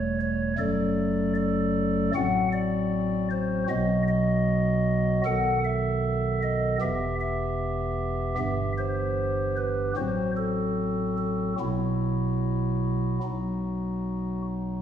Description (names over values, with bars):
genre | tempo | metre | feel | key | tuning
classical, chorale-style piece for pipe organ | 76 BPM | 4/4 | uneven beats, rubato | unclear | A4 = 441 Hz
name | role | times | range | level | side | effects
pipe organ, stopped flute | solo | 0.0-14.8 s | E1 to F#5 | -24 LUFS | equal | none
room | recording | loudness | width
wet stone room reverb, RT60 1.3 s | none | -24 LUFS | side -9 dB against mid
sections
0.0-14.8 A section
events
none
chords
0.0 A7/E; 0.6 D/F#; 2.1 F#dim/A; 3.7 B; 5.3 B7; 6.8 Em; 8.4 Em/G; 10.0 F#dim/A; 11.6 Bsus4; 13.2 B